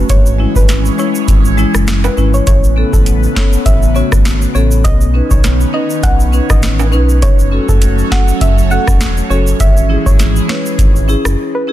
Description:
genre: dancehall.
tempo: 101 BPM.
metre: 4/4.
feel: swing 56% on 16ths.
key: C# minor.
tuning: A4 = 438 Hz.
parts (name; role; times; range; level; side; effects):
airy breathy pad; sustained chords; 0.0-11.7 s; C#3 to C#4; -20 LUFS; right 2 dB; chorus, phaser, sidechain pumping.
round analog bass; bass; 0.0-11.4 s; E1 to B1; -13 LUFS; equal; none.
soft round pluck; melody; 0.1-11.7 s; A4 to F#5; -21 LUFS; right 1 dB; chorus, digital delay.
booming analog drum machine; drums; 0.1-11.4 s; hi-hat, kick drum, rim click, snare drum; -12 LUFS; equal; soft clipping on snare.
egg shaker and timbales; percussion; 0.1-11.4 s; none; -27 LUFS; right 5 dB; none.
marimba with medium mallets; accompaniment; 0.4-11.7 s; G#3 to B4; -19 LUFS; left 4 dB; sidechain pumping.
room: digital ambience.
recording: dense, heavily limited modern master.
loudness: -9 LUFS.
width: side -13 dB against mid.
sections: 0.0-11.7 A section.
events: break 11.4-11.7.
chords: 0.1 C#m/G#; 2.5 Aadd9; 4.8 Badd9; 7.2 F#m; 9.6 C#m/G#.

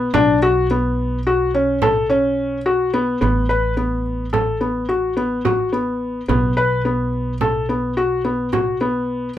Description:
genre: contemporary instrumental, chamber music in an uneven meter.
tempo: 214 BPM (eighths).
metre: 11/8.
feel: straight.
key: unclear.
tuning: A4 = 440 Hz.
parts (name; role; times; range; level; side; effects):
felt-muted upright piano; arpeggios; 0.0-9.3 s; B3 to B4; -18 LUFS; left 2 dB; none.
upright bass; bass; 0.0-9.3 s; A1 to B1; -24 LUFS; right 1 dB; none.
frame drum; percussion; 0.1-8.8 s; none; -24 LUFS; right 6 dB; none.
room: light reverb.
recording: none.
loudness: -17 LUFS.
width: side -12 dB against mid.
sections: 0.0-3.2 A section; 3.2-9.4 B section.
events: none.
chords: 0.0 Bsus2; 3.2 Asus2; 6.3 B5.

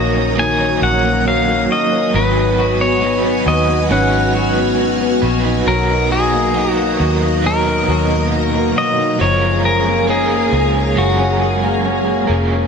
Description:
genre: dream pop.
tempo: 68 BPM.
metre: 4/4.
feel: straight.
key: F# major.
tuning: A4 = 438 Hz.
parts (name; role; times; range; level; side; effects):
pedal steel guitar; melody; 0.0-12.3 s; F#4 to G#5; -18 LUFS; left 2 dB; analog delay.
overdriven electric guitar; accompaniment; 0.0-12.7 s; G#2 to C#5; -22 LUFS; right 8 dB; tremolo, wide subtle chorus.
string machine, full ensemble; sustained chords; 0.0-12.7 s; F#4 to E#6; -20 LUFS; right 1 dB; ensemble chorus.
electric guitar through a small old amp; arpeggios; 0.0-12.7 s; D#3 to G#4; -20 LUFS; left 5 dB; analog chorus, analog delay.
vintage muted fingered electric bass; bass; 0.0-12.7 s; E#1 to D#2; -20 LUFS; equal; none.
flamenco guitar; texture; 3.9-12.7 s; C#4 to A#4; -27 LUFS; right 3 dB; none.
room: moderate spring reverb, RT60 2.2 s.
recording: echo-heavy mix.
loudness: -13 LUFS.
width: side -6 dB against mid.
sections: 0.0-12.7 A section.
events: none.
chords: 0.0 F#6; 2.1 G#m7; 5.7 Bmaj7; 9.2 F#maj9.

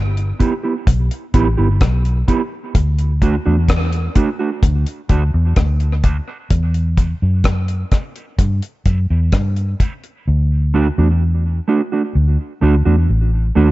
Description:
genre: dub reggae.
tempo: 64 BPM.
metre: 4/4.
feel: straight.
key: E minor.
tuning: A4 = 440 Hz.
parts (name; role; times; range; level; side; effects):
vintage muted fingered electric bass; bass; 0.0-13.7 s; G1 to G2; -15 LUFS; equal; none.
deep reggae drum kit; drums; 0.2-10.2 s; hi-hat, kick drum, rim click; -16 LUFS; equal; none.
mellow electric guitar; accompaniment; 0.4-13.7 s; A3 to G4; -20 LUFS; right 4 dB; high-pass filter, tape echo.
room: studio reverb.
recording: nothing above 7.9 kHz.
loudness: -14 LUFS.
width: side -18 dB against mid.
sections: 0.0-13.7 A section.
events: filter sweep on clean electric guitar 2.7-10.3; part muted 10.3-13.7; kick muted 12.1-13.7.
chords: 0.0 Em; 2.7 D; 6.5 Em; 10.3 D.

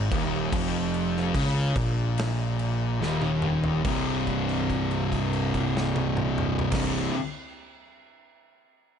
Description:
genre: stoner and doom metal.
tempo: 71 BPM.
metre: 4/4.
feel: straight.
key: C phrygian.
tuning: A4 = 441 Hz.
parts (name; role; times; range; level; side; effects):
thick fuzz guitar; riff; 0.0-7.1 s; C2 to Db3; -28 LUFS; left 8 dB; distortion.
thick fuzz guitar; riff; 0.0-7.1 s; C2 to Db3; -28 LUFS; right 7 dB; distortion.
fuzz fingered electric bass; bass; 0.0-7.1 s; C1 to Db2; -33 LUFS; equal; overdrive.
big rock drum kit; drums; 0.1-6.9 s; crash cymbal, kick drum, snare drum, toms; -32 LUFS; equal; none.
room: studio ambience.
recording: nothing above 10.5 kHz.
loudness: -24 LUFS.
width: side -7 dB against mid.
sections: 0.0-3.8 A section; 3.8-7.2 B section.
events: slowing down 0.0-3.8; drum fill 3.0-3.8; held note 3.8-6.7.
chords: 0.0 Eb5; 3.8 C5.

